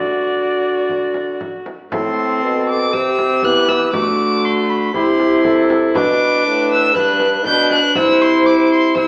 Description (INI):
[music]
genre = classical, renaissance-style consort dance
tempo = 119 BPM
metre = 4/4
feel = straight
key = D mixolydian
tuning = A4 = 438 Hz
[part]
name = mellow tenor recorder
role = melody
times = 0.0-9.1 s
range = F#4 to D5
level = -22 LUFS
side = equal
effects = none
[part]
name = rich violin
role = second line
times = 0.0-9.1 s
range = F#4 to G6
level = -21 LUFS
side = equal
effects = none
[part]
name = warm viola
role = accompaniment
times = 0.0-9.1 s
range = A3 to F#4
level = -21 LUFS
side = equal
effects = none
[part]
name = clear trombone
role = bass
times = 0.0-9.1 s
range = G2 to E3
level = -23 LUFS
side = equal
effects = none
[part]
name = frame drum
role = percussion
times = 0.9-9.1 s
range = none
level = -31 LUFS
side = equal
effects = none
[sound]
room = wet stone room reverb, RT60 1.5 s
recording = heard from further back in the room, AM radio sound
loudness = -16 LUFS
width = mono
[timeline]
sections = 0.0-1.9 A section; 1.9-9.1 A section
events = none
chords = 0.0 D; 1.9 Am; 2.9 C; 3.9 D; 5.0 C; 6.0 Bm; 7.0 G; 8.0 C